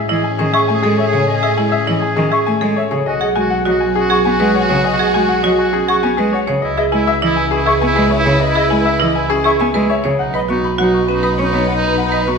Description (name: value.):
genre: classical, minimalist pattern music.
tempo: 101 BPM.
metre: 3/4.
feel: straight.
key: A lydian.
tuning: A4 = 439 Hz.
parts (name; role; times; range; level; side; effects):
clear baby grand piano; melody; 0.0-12.4 s; G#4 to C#6; -20 LUFS; left 7 dB; none.
clear oboe; second line; 0.0-12.3 s; D#4 to G#4; -22 LUFS; right 3 dB; none.
rich symphonic violin section; sustained chords; 0.0-12.4 s; C#4 to B4; -24 LUFS; left 6 dB; none.
rich double bass; bass; 0.0-12.4 s; B1 to A2; -22 LUFS; right 2 dB; none.
rich cello; accompaniment; 0.1-12.4 s; C#3 to C#4; -21 LUFS; equal; none.
marimba with hard mallets; arpeggios; 0.1-12.4 s; C#4 to D#5; -18 LUFS; right 4 dB; none.
silver concert flute; arpeggios; 0.5-12.2 s; D#5 to D#6; -22 LUFS; left 2 dB; none.
room: wet recital hall reverb, RT60 1.6 s.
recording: minimal, uncompressed stereo recording.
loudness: -13 LUFS.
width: side -5 dB against mid.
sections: 0.0-12.4 A section.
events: none.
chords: 0.0 Amaj7; 3.1 G#m7/B; 6.6 C#m7; 10.2 B.